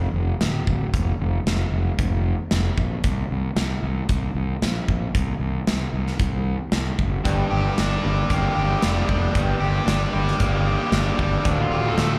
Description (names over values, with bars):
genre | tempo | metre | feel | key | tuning
classic rock | 114 BPM | 4/4 | straight | unclear | A4 = 440 Hz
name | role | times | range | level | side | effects
fuzz fingered electric bass | bass | 0.0-12.1 s | D1 to C2 | -26 LUFS | equal | overdrive
big rock drum kit | drums | 0.4-12.1 s | hi-hat, kick drum, snare drum | -28 LUFS | equal | none
distorted electric guitar | riff | 7.2-12.2 s | D2 to G4 | -27 LUFS | equal | overdrive
raw garage guitar | riff | 7.2-12.2 s | D2 to G4 | -30 LUFS | equal | overdrive, phaser, slapback echo
octave-fuzz lead guitar | second line | 11.5-12.2 s | D4 to A4 | -30 LUFS | equal | distortion, slapback echo
room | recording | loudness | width
small room ambience | live gig heard through the venue's PA, club reverb | -22 LUFS | mono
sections
0.0-12.2 A section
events
none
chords
0.0 N.C.; 7.2 Gm; 11.5 Dm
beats
0.41 | 0.94 1.46 1.99 2.51 | 3.04 3.57 4.09 4.62 | 5.14 5.67 6.20 6.72 | 7.25 7.78 8.30 8.83 | 9.35 9.88 10.40 10.93 | 11.46 11.98